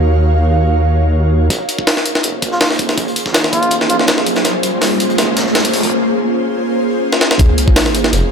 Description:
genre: drum and bass, jungle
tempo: 163 BPM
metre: 4/4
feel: swing 53% on 16ths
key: Bb minor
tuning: A4 = 440 Hz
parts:
  - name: ethereal airy pad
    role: sustained chords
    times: 0.0-8.3 s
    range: Eb4 to F5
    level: -17 LUFS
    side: right 2 dB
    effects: ensemble chorus, built-in reverb
  - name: detuned saw bass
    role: bass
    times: 0.0-8.2 s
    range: F1 to Eb2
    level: -16 LUFS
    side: equal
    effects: high-pass filter
  - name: jungle sampler-style drum kit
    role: drums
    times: 1.5-8.2 s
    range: hi-hat, kick drum, snare drum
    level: -14 LUFS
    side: equal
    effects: high-pass filter on kick, high-pass filter on hats, high-pass filter on snare, high-pass filter on room
  - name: vintage drum kit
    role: drums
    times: 1.5-8.2 s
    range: hi-hat, snare drum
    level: -25 LUFS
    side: equal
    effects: none
  - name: riser and sub drop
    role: sound effects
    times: 3.3-8.3 s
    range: none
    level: -20 LUFS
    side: left 1 dB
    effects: none
  - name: trumpet with cup mute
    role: melody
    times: 2.5-4.0 s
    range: F4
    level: -22 LUFS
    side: equal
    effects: low-pass filter, dub echo
room: light reverb, small room reverb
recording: none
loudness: -12 LUFS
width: side -6 dB against mid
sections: 0.0-1.5 A section; 1.5-7.4 B section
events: build-up 1.5-7.4; riser 3.3-5.9; drum fill 4.4-5.9, 7.1; impact 7.4-8.3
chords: 0.0 Ebm7; 1.5 Bbm7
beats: | 0.03 0.40 0.77 1.14 | 1.50 1.87 2.24 2.61 | 2.98 3.35 3.71 4.08 | 4.45 4.82 5.18 5.55 | 5.92 6.29 6.66 7.03 | 7.39 7.76 8.13

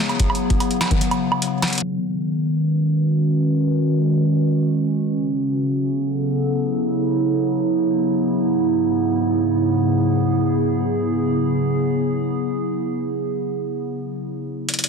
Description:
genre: IDM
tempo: 147 BPM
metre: 4/4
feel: straight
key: unclear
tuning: A4 = 435 Hz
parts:
  - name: warbly tape-like pad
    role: sustained chords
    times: 0.0-14.5 s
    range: G#2 to B4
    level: -19 LUFS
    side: equal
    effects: chorus, built-in reverb, vintage 12-bit sampler grit
  - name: booming analog drum machine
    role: drums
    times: 0.1-1.9, 14.7-14.9 s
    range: congas, hi-hat, snare drum, woodblock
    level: -22 LUFS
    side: equal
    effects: low-pass filter on hats, low-pass filter on snare, low-pass filter on perc, ping-pong delay
  - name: electronic kick drum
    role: drums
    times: 0.2-1.0 s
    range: none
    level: -20 LUFS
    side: equal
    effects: none
room: moderate lush hall reverb, RT60 2.3 s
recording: dense, heavily limited modern master, low-pass filter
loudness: -18 LUFS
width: side -5 dB against mid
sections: 0.0-1.8 A section; 1.8-14.9 B section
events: kick drops out 1.0-1.8; drum fill 1.6, 14.7; filter sweep on ambient pad 1.8-14.9; filter sweep 1.8-14.9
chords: 0.0 E69/C#; 1.8 Badd9; 5.1 F#m; 8.4 E/G#; 11.6 E69/C#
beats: | 0.20 0.60 1.01 1.42 | 1.83 2.24 2.65 3.05 | 3.46 3.87 4.28 4.69 | 5.09 5.50 5.91 6.32 | 6.73 7.13 7.54 7.95 | 8.36 8.77 9.18 9.58 | 9.99 10.40 10.81 11.22 | 11.62 12.03 12.44 12.85 | 13.26 13.67 14.07 14.48

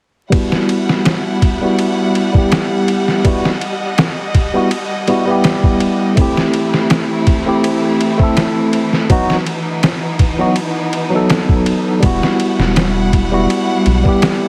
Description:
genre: trip hop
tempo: 82 BPM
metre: 4/4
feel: straight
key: E harmonic minor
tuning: A4 = 440 Hz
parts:
  - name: barky tine electric piano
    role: accompaniment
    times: 0.3-14.5 s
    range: F#3 to A4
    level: -18 LUFS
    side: equal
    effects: harmonic tremolo, vintage 12-bit sampler grit, low-pass filter, tape echo
  - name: clear studio string section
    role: sustained chords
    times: 0.3-14.5 s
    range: E3 to F#5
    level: -24 LUFS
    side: equal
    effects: vintage 12-bit sampler grit
  - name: trip hop sampler-style drum kit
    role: drums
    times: 0.3-14.4 s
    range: kick drum, ride cymbal, snare drum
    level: -19 LUFS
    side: equal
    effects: none
  - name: round analog bass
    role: bass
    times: 12.0-14.0 s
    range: E1 to B1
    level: -19 LUFS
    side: equal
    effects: none
room: digital ambience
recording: heavily compressed radio sound, multiband compression, vinyl crackle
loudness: -15 LUFS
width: mono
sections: 0.3-14.5 A section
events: filter sweep on tine electric piano 0.3-14.5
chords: 0.3 Emadd9; 6.2 C6/E; 9.1 B/E; 12.0 Emadd9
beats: | 0.32 1.05 1.79 2.52 | 3.25 3.98 4.71 5.44 | 6.18 6.91 7.64 8.37 | 9.10 9.84 10.57 11.30 | 12.03 12.76 13.49 14.22

